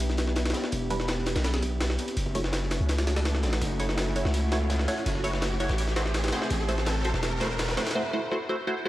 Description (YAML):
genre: drum and bass, jungle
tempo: 166 BPM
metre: 4/4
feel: straight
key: unclear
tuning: A4 = 440 Hz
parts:
  - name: warbly tape-like pad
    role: sustained chords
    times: 0.0-7.9 s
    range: A3 to A4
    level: -34 LUFS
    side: equal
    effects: chorus, built-in reverb, vintage 12-bit sampler grit
  - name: long sustained 808-style bass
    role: bass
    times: 0.0-7.8 s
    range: E1 to C#2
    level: -28 LUFS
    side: equal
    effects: none
  - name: crunchy breakbeat drum kit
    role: drums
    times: 0.0-8.0 s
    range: hi-hat, snare drum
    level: -39 LUFS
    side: left 1 dB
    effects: high-pass filter on hats, small room ambience, high-pass filter on snare, high-pass filter on room
  - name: jungle sampler-style drum kit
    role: drums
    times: 0.0-8.0 s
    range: kick drum, ride cymbal, snare drum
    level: -32 LUFS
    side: equal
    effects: high-pass filter on cymbals, small room ambience, high-pass filter on snare, high-pass filter on kick
  - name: riser and swell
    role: sound effects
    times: 0.2-8.9 s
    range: none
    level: -36 LUFS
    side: equal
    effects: none
  - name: filtered dub chord stab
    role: stabs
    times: 0.9-8.9 s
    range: G3 to C#5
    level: -31 LUFS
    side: right 1 dB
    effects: phaser, dub echo
room: moderate lush hall reverb, RT60 2.0 s, digital ambience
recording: dry, gritty hardware recording, vinyl crackle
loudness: -25 LUFS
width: side -15 dB against mid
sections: 0.0-8.9 A section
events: build-up 0.0-8.9; riser 0.2-8.0; swell 8.7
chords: 0.0 Em7; 2.2 F#m7; 5.8 Am7